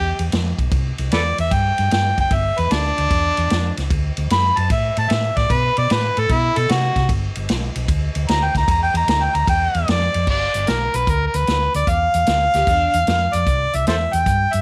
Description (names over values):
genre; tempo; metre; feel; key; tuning
electric blues shuffle; 151 BPM; 4/4; swing 67% on 8ths; G mixolydian; A4 = 440 Hz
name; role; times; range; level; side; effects
warm harmonica; melody; 0.0-14.6 s; D4 to B5; -21 LUFS; equal; overdrive, slapback echo
hollow-body short-scale fingered electric bass; bass; 0.0-14.6 s; F#1 to C3; -24 LUFS; equal; none
vintage drum kit; drums; 0.2-14.6 s; crash cymbal, hi-hat, kick drum, ride cymbal, snare drum; -25 LUFS; equal; none
overdriven slide guitar; second line; 12.6-12.9 s; D4 to G4; -32 LUFS; equal; none
room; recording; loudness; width
light reverb, small room ambience; none; -19 LUFS; mono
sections
0.0-10.3 A section; 10.3-14.6 B section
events
harmonica solo 0.0-10.3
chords
0.0 G6; 0.7 C; 2.3 G5; 3.9 D6; 7.1 G6; 13.5 C